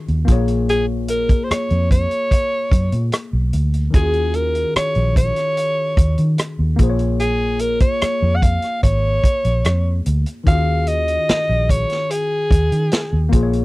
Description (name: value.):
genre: lush 1970s-style soul.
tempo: 74 BPM.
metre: 4/4.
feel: straight.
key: Eb minor.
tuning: A4 = 440 Hz.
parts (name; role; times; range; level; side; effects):
tine electric piano; accompaniment; 0.0-13.6 s; Eb3 to Db5; -25 LUFS; left 3 dB; analog chorus.
vintage muted fingered electric bass; bass; 0.1-13.6 s; Ab1 to Eb3; -18 LUFS; equal; none.
vintage drum kit; drums; 0.1-13.6 s; hi-hat, kick drum, rim click, snare drum; -16 LUFS; equal; none.
clear alto saxophone; melody; 0.7-13.3 s; Ab4 to Gb5; -20 LUFS; equal; none.
room: little or no reverb.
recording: dry, close 1970s-style studio recording.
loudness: -15 LUFS.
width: side -20 dB against mid.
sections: 0.0-13.6 A section.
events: none.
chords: 0.3 Bbm7; 3.9 Ebm11; 6.8 Bbm7; 10.5 Ebm11.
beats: | 0.69 1.50 2.31 3.13 | 3.94 4.75 5.57 6.38 | 7.20 8.02 8.83 9.65 | 10.46 11.28 12.10 12.92.